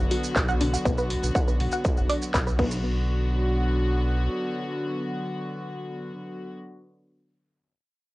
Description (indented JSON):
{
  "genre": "melodic techno",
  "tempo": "121 BPM",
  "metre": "4/4",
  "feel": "straight",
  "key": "B minor",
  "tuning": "A4 = 439 Hz",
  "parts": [
    { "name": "rich studio string section", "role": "sustained chords", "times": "0.0-6.5 s", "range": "D3 to F#4", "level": "-30 LUFS", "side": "left 1 dB", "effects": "vintage 12-bit sampler grit, sidechain pumping, cassette tape" },
    { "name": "round analog bass", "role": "bass", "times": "0.0-4.3 s", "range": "F#1 to B1", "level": "-26 LUFS", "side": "equal", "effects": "sidechain pumping" },
    { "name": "analog pluck", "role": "arpeggios", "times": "0.1-3.1 s", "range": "B3 to F#5", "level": "-29 LUFS", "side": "equal", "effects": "chorus, sidechain pumping, cassette tape, analog delay" },
    { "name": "techno drum kit", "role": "drums", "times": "0.1-2.7 s", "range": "crash cymbal, handclaps, hi-hat", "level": "-32 LUFS", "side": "equal", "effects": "sidechain pumping on hats, cassette tape, sidechain pumping on cymbals" },
    { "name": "maracas", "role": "percussion", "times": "0.2-2.8 s", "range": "none", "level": "-38 LUFS", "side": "right 4 dB", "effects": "none" },
    { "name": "electronic kick drum", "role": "drums", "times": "0.4-2.7 s", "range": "none", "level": "-26 LUFS", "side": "equal", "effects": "distortion, cassette tape" }
  ],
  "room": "light reverb",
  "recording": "home recording on cassette, nothing above 11.0 kHz",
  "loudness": "-23 LUFS",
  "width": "side -20 dB against mid",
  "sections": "0.0-2.8 A section; 2.8-6.8 B section",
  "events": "filter sweep on synth arpeggio sound 0.0-2.8",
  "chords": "0.0 Bm"
}